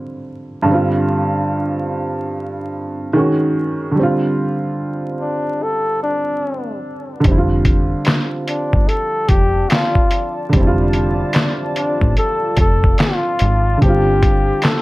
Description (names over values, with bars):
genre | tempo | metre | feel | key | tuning
lo-fi hip hop | 73 BPM | 4/4 | swing 61% on 16ths | F major | A4 = 440 Hz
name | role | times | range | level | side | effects
dark upright piano | accompaniment | 0.0-14.8 s | G2 to Gb4 | -19 LUFS | right 1 dB | cassette tape, low-pass filter
breathy flugelhorn | melody | 5.2-14.8 s | D4 to A4 | -20 LUFS | left 2 dB | low-pass filter, tape echo
deep dub fingered electric bass | bass | 7.2-14.5 s | F1 to A1 | -17 LUFS | equal | none
lo-fi sampler-style drum kit | drums | 7.2-14.8 s | handclaps, hi-hat, kick drum, snare drum | -16 LUFS | equal | none
deep dark ambient pad | sustained chords | 9.0-14.8 s | F4 to A5 | -28 LUFS | equal | chorus, built-in reverb, low-pass filter
room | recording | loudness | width
moderate studio reverb, RT60 0.6 s | vinyl crackle | -14 LUFS | side -19 dB against mid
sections
0.0-14.8 A section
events
break 0.0-0.7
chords
0.0 F5; 0.7 G7sus4; 3.1 Ab5; 4.0 G5; 7.2 F6; 13.8 G7sus4